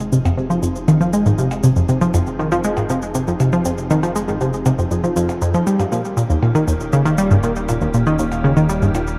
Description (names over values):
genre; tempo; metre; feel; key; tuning
ambient, sequencer-driven space music; 119 BPM; 4/4; straight; F minor; A4 = 440 Hz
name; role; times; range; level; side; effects
evolving wavetable pad; sustained chords; 0.0-9.2 s; Eb3 to Ab4; -32 LUFS; equal; chorus, built-in reverb, shimmer reverb
vibraphone with medium mallets; arpeggios; 0.0-9.1 s; Eb4 to F5; -34 LUFS; equal; none
fat analog bass; bass; 0.0-9.2 s; F1; -34 LUFS; equal; tube saturation
cabasa and percussion blips; percussion; 0.0-9.2 s; none; -36 LUFS; equal; delay
tight sequenced synth; riff; 0.1-9.0 s; Eb2 to Ab3; -18 LUFS; equal; chorus, delay
room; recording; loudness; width
moderate plate reverb, RT60 2.8 s; dark, warm production; -18 LUFS; mono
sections
0.0-9.2 A section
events
fade-in on ambient pad 0.0-9.2; fade-in on analog synth bass 0.0-9.2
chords
0.0 Fm7; 5.7 Eb7